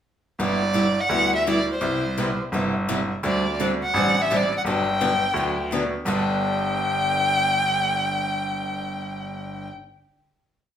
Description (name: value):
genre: acoustic string swing (jazz manouche)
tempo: 170 BPM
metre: 4/4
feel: swing 60% on 8ths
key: G major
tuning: A4 = 438 Hz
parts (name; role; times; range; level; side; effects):
- warm violin; melody; 0.4-9.7 s; C5 to G5; -23 LUFS; left 1 dB; none
- picked acoustic archtop guitar; accompaniment; 0.4-9.7 s; G2 to G4; -28 LUFS; left 2 dB; none
- picked steel-string acoustic guitar; accompaniment; 0.4-9.7 s; G2 to G4; -30 LUFS; right 4 dB; none
- bright grand piano; bass; 0.4-9.6 s; G1 to D2; -27 LUFS; right 1 dB; none
room: wet large studio reverb, RT60 0.9 s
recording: band playing live in one room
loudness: -20 LUFS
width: side -9 dB against mid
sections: 0.4-6.1 A section; 6.1-8.9 final chord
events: none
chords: 0.4 G6; 1.8 Cmaj7; 3.2 D7sus4; 4.7 Gmaj7; 6.1 G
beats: | 0.40 0.75 1.11 1.46 | 1.82 2.17 2.53 2.88 | 3.24 3.59 3.94 4.30 | 4.65 5.00 5.36 5.71 | 6.06 6.42 6.77 7.12 | 7.48 7.83 8.19 8.54